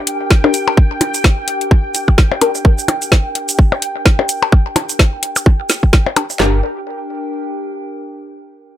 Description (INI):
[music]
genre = minimal techno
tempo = 128 BPM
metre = 4/4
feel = swing 58% on 16ths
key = G minor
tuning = A4 = 441 Hz
[part]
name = bubbling stepped-filter texture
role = texture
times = 0.0-6.4 s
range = G5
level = -25 LUFS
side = right 2 dB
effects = chorus, built-in reverb, sidechain pumping
[part]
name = warbly tape-like pad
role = texture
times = 0.0-8.2 s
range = D4 to G5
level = -27 LUFS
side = left 2 dB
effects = chorus, built-in reverb, sidechain pumping
[part]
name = garage drum kit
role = drums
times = 0.1-6.4 s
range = cabasa, hi-hat, snare drum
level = -15 LUFS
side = equal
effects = none
[part]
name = garage drum kit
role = drums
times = 0.3-6.5 s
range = handclaps, kick drum, snare drum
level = -10 LUFS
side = equal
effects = none
[part]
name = filtered dub chord stab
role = stabs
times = 0.4-6.6 s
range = D4 to Bb4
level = -18 LUFS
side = left 4 dB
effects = lush chorus, digital delay
[part]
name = percussion blips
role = percussion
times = 0.4-6.3 s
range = none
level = -18 LUFS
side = left 3 dB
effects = digital delay
[part]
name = hollow square pluck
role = riff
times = 6.4-6.6 s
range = G4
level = -25 LUFS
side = right 7 dB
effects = chorus, sidechain pumping, dub echo
[part]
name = woody FM bass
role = bass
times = 6.4-6.6 s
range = G1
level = -15 LUFS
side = equal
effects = sidechain pumping
[sound]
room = light reverb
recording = none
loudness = -12 LUFS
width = side -12 dB against mid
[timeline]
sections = 0.0-6.4 A section; 6.4-8.3 B section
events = fade-out on ambient pad 0.0-6.4; filter sweep on synth stab 0.0-6.4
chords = 0.0 Gm